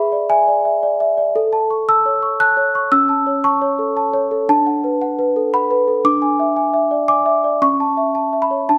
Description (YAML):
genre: classical, lullaby for celesta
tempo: 114 BPM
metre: 3/4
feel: rubato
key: A major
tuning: A4 = 440 Hz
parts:
  - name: worn celesta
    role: solo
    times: 0.0-8.8 s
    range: C#4 to F#6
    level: -16 LUFS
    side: equal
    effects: none
room: moderate recital hall reverb, RT60 1.6 s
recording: close, detailed microphones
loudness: -17 LUFS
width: mono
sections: 0.0-8.8 A section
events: none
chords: 0.0 E7/G#; 1.4 A; 2.9 A/C#; 4.5 Bm7/D; 6.0 E7/D; 7.6 A/C#